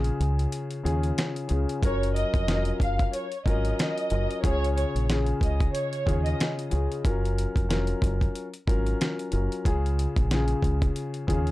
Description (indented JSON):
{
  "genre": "hip hop, boom-bap hip-hop",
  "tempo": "92 BPM",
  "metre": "4/4",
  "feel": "swing 57% on 16ths",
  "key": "Db major",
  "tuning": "A4 = 440 Hz",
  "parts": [
    { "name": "dark baby grand piano", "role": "accompaniment", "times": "0.0-11.5 s", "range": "Db3 to Bb4", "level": "-30 LUFS", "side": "left 3 dB", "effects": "cassette tape, high-pass filter, low-pass filter" },
    { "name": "deep dub fingered electric bass", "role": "bass", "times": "0.0-11.5 s", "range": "F1 to Eb2", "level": "-26 LUFS", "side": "equal", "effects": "none" },
    { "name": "dusty soul sampler-style drum kit", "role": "drums", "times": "0.0-11.5 s", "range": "hi-hat, kick drum, snare drum", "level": "-27 LUFS", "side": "equal", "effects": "none" },
    { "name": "dark studio violin section", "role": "melody", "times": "1.8-6.4 s", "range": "Db5 to F5", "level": "-31 LUFS", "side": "equal", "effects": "high-pass filter, low-pass filter, tape echo" }
  ],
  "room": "little or no reverb",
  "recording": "dark, warm production",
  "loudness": "-24 LUFS",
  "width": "side -17 dB against mid",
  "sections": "0.0-11.5 A section",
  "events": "break 0.0-1.8",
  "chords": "0.0 Db; 1.8 Gbmaj7; 4.4 Db; 7.0 Gbmaj7; 9.7 Db"
}